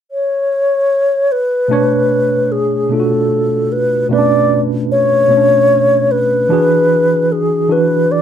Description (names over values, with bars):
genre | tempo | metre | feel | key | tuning
R&B | 50 BPM (dotted quarters) | 6/8 | straight | B dorian | A4 = 440 Hz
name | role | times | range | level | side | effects
wooden-headed alto flute | melody | 0.1-8.2 s | G#4 to D5 | -12 LUFS | left 1 dB | slapback echo
tine electric piano | accompaniment | 1.7-8.2 s | B2 to C#5 | -15 LUFS | right 1 dB | overdrive, fast stereo tremolo
room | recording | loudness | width
moderate studio ambience, RT60 0.5 s | none | -11 LUFS | side -9 dB against mid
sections
0.0-1.7 A section; 1.7-8.2 B section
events
none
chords
0.0 N.C.; 1.7 Bm9; 6.5 E9